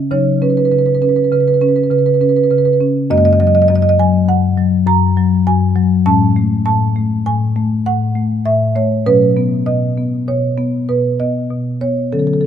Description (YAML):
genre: classical, contemporary piece for solo marimba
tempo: 100 BPM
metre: 5/4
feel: rubato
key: unclear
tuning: A4 = 440 Hz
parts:
  - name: marimba with medium mallets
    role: solo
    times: 0.0-12.5 s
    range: F#2 to A#5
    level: -12 LUFS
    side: equal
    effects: none
room: moderate concert hall reverb, RT60 2.3 s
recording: close, detailed microphones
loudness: -12 LUFS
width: side -9 dB against mid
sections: 0.0-12.5 A section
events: none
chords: 0.1 Badd9/C#; 3.1 F#69; 6.1 Amaj7; 9.1 Badd9